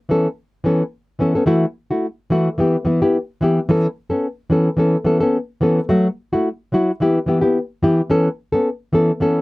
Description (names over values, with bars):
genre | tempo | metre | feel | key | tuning
highlife | 108 BPM | 4/4 | swing 55% on 16ths | unclear | A4 = 441 Hz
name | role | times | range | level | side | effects
nylon-string guitar | solo | 0.1-9.4 s | E3 to A4 | -15 LUFS | left 1 dB | none
room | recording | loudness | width
little or no reverb | dry, close 1970s-style studio recording | -16 LUFS | side -21 dB against mid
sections
0.0-1.5 A section; 1.5-9.4 B section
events
none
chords
0.0 Aadd9; 1.5 Esus24; 2.6 Em; 3.7 Aadd9; 5.9 F#m7; 7.0 Em; 8.1 Aadd9